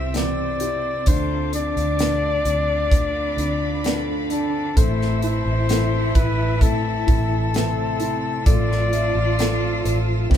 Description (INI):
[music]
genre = pop ballad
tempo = 65 BPM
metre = 4/4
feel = straight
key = unclear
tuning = A4 = 440 Hz
[part]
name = clear flugelhorn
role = melody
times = 0.0-10.4 s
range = A4 to E5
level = -25 LUFS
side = left 3 dB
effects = none
[part]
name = rich symphonic cello section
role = second line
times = 0.0-10.4 s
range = C3 to F4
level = -28 LUFS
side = left 1 dB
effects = none
[part]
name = felt-muted upright piano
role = accompaniment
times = 0.0-10.4 s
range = A3 to E5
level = -28 LUFS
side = left 1 dB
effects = none
[part]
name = warm chamber string section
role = sustained chords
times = 0.0-10.4 s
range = C4 to E6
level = -34 LUFS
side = right 1 dB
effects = none
[part]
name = fingerpicked steel-string acoustic guitar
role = arpeggios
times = 0.0-10.4 s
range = A2 to C5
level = -32 LUFS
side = right 1 dB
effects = none
[part]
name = vintage muted fingered electric bass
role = bass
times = 0.0-10.4 s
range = A1 to D2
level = -24 LUFS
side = equal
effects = none
[part]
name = modern studio drum kit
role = drums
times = 0.1-10.4 s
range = hi-hat, kick drum, snare drum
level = -20 LUFS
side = equal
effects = none
[sound]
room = moderate small room reverb, RT60 0.5 s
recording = band playing live in one room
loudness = -18 LUFS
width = side -9 dB against mid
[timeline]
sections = 0.0-10.4 A section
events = none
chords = 0.0 Cmaj7; 1.1 Dm7; 4.8 Am; 8.5 Fmaj7/A